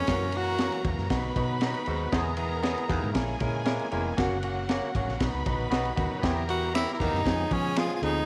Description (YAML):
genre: uptempo 1960s-style soul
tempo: 117 BPM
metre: 4/4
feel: straight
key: B major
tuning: A4 = 441 Hz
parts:
  - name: breathy tenor saxophone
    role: melody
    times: 0.0-0.9, 6.5-8.3 s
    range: C#4 to F#4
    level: -31 LUFS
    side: equal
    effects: none
  - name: dark studio string section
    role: second line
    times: 0.0-8.3 s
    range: F#4 to B5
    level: -38 LUFS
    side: equal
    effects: none
  - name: barky tine electric piano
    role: accompaniment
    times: 0.0-8.2 s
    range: E3 to A#4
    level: -35 LUFS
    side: equal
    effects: overdrive, subtle chorus
  - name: overdriven tonewheel organ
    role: sustained chords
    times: 0.0-8.3 s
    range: C#3 to G#4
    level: -45 LUFS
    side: equal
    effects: none
  - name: warm baritone saxophone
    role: riff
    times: 0.0-8.2 s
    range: D#2 to G#2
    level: -38 LUFS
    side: equal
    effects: none
  - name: vintage muted fingered electric bass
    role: bass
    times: 0.1-8.2 s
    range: E#1 to E#3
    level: -35 LUFS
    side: equal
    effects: transformer saturation
  - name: crunchy breakbeat drum kit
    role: drums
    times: 0.1-8.1 s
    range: kick drum, ride cymbal, snare drum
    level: -33 LUFS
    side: equal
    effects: none
  - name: finger snaps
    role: percussion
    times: 6.8-7.9 s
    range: none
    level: -40 LUFS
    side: equal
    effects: none
room: light reverb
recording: none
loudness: -28 LUFS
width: mono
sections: 0.0-8.3 A section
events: none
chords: 0.1 F#7; 1.1 B; 2.1 E; 3.2 A#m7b5; 4.2 F#; 5.2 B; 6.2 Em; 7.3 C#7/E#